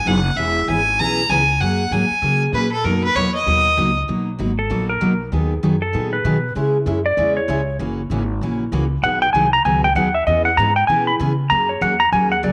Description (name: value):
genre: country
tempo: 194 BPM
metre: 4/4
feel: swing 62% on 8ths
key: B major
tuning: A4 = 440 Hz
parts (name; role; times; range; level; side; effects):
- clear fiddle; second line; 0.0-4.0 s; A4 to A#5; -20 LUFS; equal; none
- upright bass; bass; 0.0-12.5 s; E1 to C#3; -26 LUFS; equal; none
- picked steel-string acoustic guitar; accompaniment; 0.1-12.5 s; B2 to G#4; -24 LUFS; equal; none
- clean lap steel guitar; melody; 4.6-12.5 s; A4 to B5; -20 LUFS; equal; none
room: wet spring reverb, RT60 1.3 s, studio reverb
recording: none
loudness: -18 LUFS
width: mono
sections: 0.0-4.1 A section; 4.1-12.5 A section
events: fiddle solo 0.0-4.1; electric slide guitar solo 4.1-12.5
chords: 0.4 E6; 1.6 F#add9; 2.8 Bmaj7; 5.3 G#m7; 6.6 C#m; 7.8 F#7; 9.0 B6; 10.3 E6; 11.5 F#add9